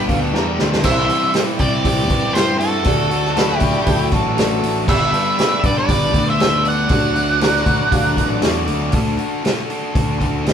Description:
classic rock; 119 BPM; 4/4; straight; A4 = 440 Hz
octave-fuzz lead guitar; melody; 0.0-8.4 s; A4 to F#5; -20 LUFS; right 1 dB; distortion
octave-fuzz lead guitar; second line; 0.0-8.4 s; F#4 to D5; -26 LUFS; right 3 dB; distortion
octave-fuzz lead guitar; second line; 0.0-8.9 s; D4 to D5; -27 LUFS; equal; distortion
warm upright piano; accompaniment; 0.0-8.8 s; D4 to A5; -28 LUFS; left 2 dB
tonewheel organ; sustained chords; 0.0-8.9 s; F#3 to D5; -31 LUFS; right 2 dB
overdriven electric guitar; riff; 0.0-10.5 s; G2 to A4; -22 LUFS; left 1 dB
fuzz picked electric bass; bass; 0.0-10.5 s; G1 to C3; -22 LUFS; left 1 dB; overdrive
vintage drum kit; drums; 0.1-10.5 s; crash cymbal, hi-hat, kick drum, snare drum, splash cymbal; -20 LUFS; equal
cowbell; percussion; 0.4-8.6 s; -31 LUFS; right 7 dB
moderate stone room reverb, RT60 1.2 s; band playing live in one room; -14 LUFS; side -8 dB against mid
0.0-8.9 A section; 8.9-10.5 B section
drum fill 0.3-0.8
0.0 G; 0.8 C; 2.9 D; 4.9 G; 6.9 D

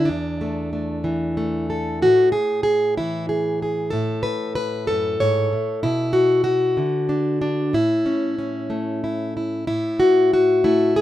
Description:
folk, solo fingerstyle acoustic guitar; 62 BPM (dotted quarters); 6/8; rubato; A major; A4 = 440 Hz
fingerpicked plugged-in steel-string acoustic guitar; solo; 0.0-11.0 s; E2 to C#5; -18 LUFS; equal
moderate booth ambience, RT60 0.2 s; minimal, uncompressed stereo recording; -18 LUFS; side -13 dB against mid
0.0-9.7 A section; 9.7-11.0 A section
0.1 Esus4; 2.0 Amaj7; 5.8 Bm; 7.7 A; 9.7 A5

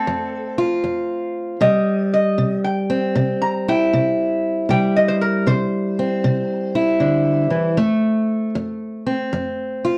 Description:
acoustic country blues, solo or duo; 78 BPM; 4/4; swing 66% on 8ths; C major; A4 = 439 Hz
metal-body resonator slide guitar; melody; 0.0-7.7 s; A4 to Bb5; -23 LUFS; equal
fingerpicked old ladder-braced acoustic guitar; accompaniment; 0.0-10.0 s; F2 to F4; -20 LUFS; equal
wet studio reverb, RT60 0.6 s; dark, warm production; -20 LUFS; mono
0.0-10.0 A section
0.0 F; 1.6 C; 7.8 F

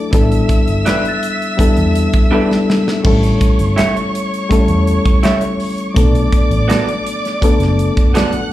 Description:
lush 1970s-style soul; 82 BPM; 4/4; straight; A4 = 439 Hz
warm studio violin section; second line; 0.0-8.5 s; C#5 to F#6; -23 LUFS; right 1 dB; plate reverb, slapback echo
reed electric piano; accompaniment; 0.0-8.5 s; F#3 to A4; -17 LUFS; left 3 dB; plate reverb
celesta; texture; 0.0-6.2 s; E6 to C#7; -25 LUFS; left 2 dB; plate reverb
vintage muted fingered electric bass; bass; 0.1-8.4 s; F#1 to E2; -15 LUFS; equal; tube saturation
modern studio drum kit; drums; 0.1-8.5 s; crash cymbal, hi-hat, kick drum, snare drum; -15 LUFS; equal
electric guitar through a small old amp; riff; 0.9-8.3 s; B3 to E5; -18 LUFS; right 4 dB; tremolo, slapback echo
light reverb; live gig heard through the venue's PA, club reverb; -12 LUFS; side -14 dB against mid
0.0-3.0 A section; 3.0-8.5 B section
drum fill 2.3-3.0
0.1 A9sus4; 3.0 A7; 6.0 Bm7

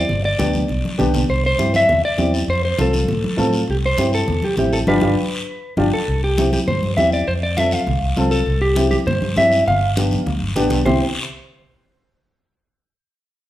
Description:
latin, cumbia; 200 BPM; 4/4; straight; C major; A4 = 444 Hz
mellow electric guitar; melody; 0.0-11.0 s; G4 to F5; -20 LUFS; equal; spring reverb
fingered electric bass; bass; 0.0-11.0 s; G1 to A2; -21 LUFS; equal
congas; percussion; 0.1-10.9 s; -24 LUFS; left 1 dB
guiro; percussion; 0.1-10.9 s; -31 LUFS; left 2 dB
dark upright piano; accompaniment; 0.4-11.0 s; B3 to A4; -21 LUFS; equal
wet large studio reverb, RT60 0.9 s; band playing live in one room; -16 LUFS; side -14 dB against mid
0.0-6.1 A section; 6.1-10.9 B section; 10.9-12.1 C section
drum fill 0.5-1.3, 5.5-6.1, 10.3-10.9; band accent 4.9-6.1
0.1 G; 1.3 C; 2.5 F; 3.7 C; 4.9 G7; 6.1 C; 7.3 F; 8.5 C; 9.7 G7; 10.9 C

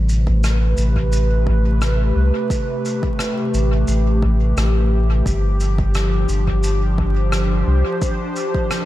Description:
ambient dub; 87 BPM; 4/4; straight; A minor; A4 = 439 Hz
airy breathy pad; sustained chords; 0.0-8.9 s; C3 to C5; -22 LUFS; equal; chorus
warm sub bass; bass; 0.0-7.8 s; G1 to C2; -16 LUFS; equal
shaker and rim click; drums; 0.1-8.9 s; -29 LUFS; equal; dub echo
electronic kick drum; drums; 0.3-8.7 s; -22 LUFS; equal
small room ambience; echo-heavy mix, vinyl crackle; -16 LUFS; side -15 dB against mid
0.0-8.9 A section
0.0 Am9; 5.3 G7sus4

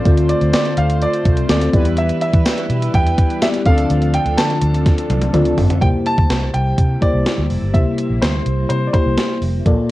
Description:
1980s-style pop; 125 BPM; 4/4; straight; A4 = 441 Hz
clear baby grand piano; melody; 0.0-9.4 s; C5 to A5; -22 LUFS; equal
mellow FM electric piano; accompaniment; 0.0-9.9 s; Bb2 to D5; -21 LUFS; left 2 dB; chorus, cassette tape
ensemble organ-string; sustained chords; 0.0-9.9 s; C3 to A4; -28 LUFS; equal
analog synth brass; stabs; 0.0-5.8 s; F3 to C5; -26 LUFS; right 1 dB; chorus, cassette tape, tape echo
vintage muted fingered electric bass; bass; 0.1-9.7 s; F1 to E3; -18 LUFS; equal
gated 80s digital drum machine; drums; 0.1-9.8 s; hi-hat, kick drum, snare drum, tambourine, toms; -17 LUFS; equal; gated reverb, gated reverb snare, cassette tape
moderate studio reverb, RT60 0.6 s; home recording on cassette; -14 LUFS; side -16 dB against mid
0.0-5.8 A section; 5.8-9.9 B section
drum fill 4.9-5.8
0.0 Dm7; 1.7 Em7; 3.7 Dm7; 5.8 C7

